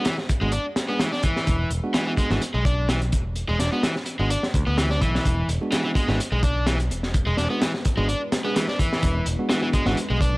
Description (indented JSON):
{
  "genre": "breakbeat, breaks",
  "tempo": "127 BPM",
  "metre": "4/4",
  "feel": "swing 54% on 16ths",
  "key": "unclear",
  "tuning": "A4 = 437 Hz",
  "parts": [
    { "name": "overdriven electric guitar", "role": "riff", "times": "0.0-10.4 s", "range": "E3 to D4", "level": "-26 LUFS", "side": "equal", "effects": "vintage 12-bit sampler grit, tape echo" },
    { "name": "tine electric piano", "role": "stabs", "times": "0.0-10.0 s", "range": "G#3 to G#4", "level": "-29 LUFS", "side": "right 2 dB", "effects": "tape echo" },
    { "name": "crunchy breakbeat drum kit", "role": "drums", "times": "0.0-10.3 s", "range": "hi-hat, kick drum, snare drum", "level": "-24 LUFS", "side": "equal", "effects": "none" },
    { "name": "modern bright picked electric bass", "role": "bass", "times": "0.4-10.4 s", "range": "E1 to D2", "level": "-24 LUFS", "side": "equal", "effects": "none" },
    { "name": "deep dark ambient pad", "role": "sustained chords", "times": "7.2-10.4 s", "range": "G#3 to B4", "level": "-37 LUFS", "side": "left 1 dB", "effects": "none" }
  ],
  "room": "small room ambience",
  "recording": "dry, gritty hardware recording, vinyl crackle",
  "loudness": "-20 LUFS",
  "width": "side -23 dB against mid",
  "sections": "0.0-10.4 A section",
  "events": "none",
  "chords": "0.0 E7"
}